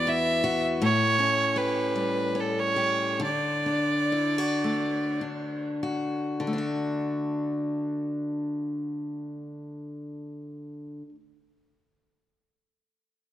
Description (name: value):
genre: celtic folk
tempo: 46-81 BPM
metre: 3/4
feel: rubato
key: D major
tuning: A4 = 441 Hz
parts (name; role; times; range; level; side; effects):
- rich fiddle; melody; 0.0-5.2 s; A4 to E5; -26 LUFS; right 2 dB; tape echo
- picked steel-string acoustic guitar; accompaniment; 0.0-11.2 s; E2 to G4; -28 LUFS; left 2 dB; none
room: light reverb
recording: close, detailed microphones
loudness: -25 LUFS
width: side -12 dB against mid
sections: 0.0-6.5 A section; 6.5-10.1 B section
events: slowing down 0.8-6.5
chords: 0.0 Esus2; 0.8 A7; 3.2 D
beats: 0.06 | 0.80 1.56 2.35 | 3.21 4.14 5.22 | 6.46 7.69 8.89